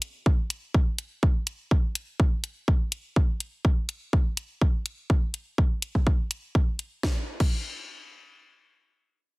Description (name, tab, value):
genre	minimal techno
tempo	124 BPM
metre	4/4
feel	straight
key	none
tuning	none
part	house drum kit	drums	0.0-7.5 s	crash cymbal, hi-hat, snare drum	-33 LUFS	left 1 dB	none
part	electronic kick drum	drums	0.3-7.5 s	none	-22 LUFS	equal	none
room	little or no reverb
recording	heavily compressed radio sound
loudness	-24 LUFS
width	side -25 dB against mid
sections	0.0-7.0 A section; 7.0-9.4 B section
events	none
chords	none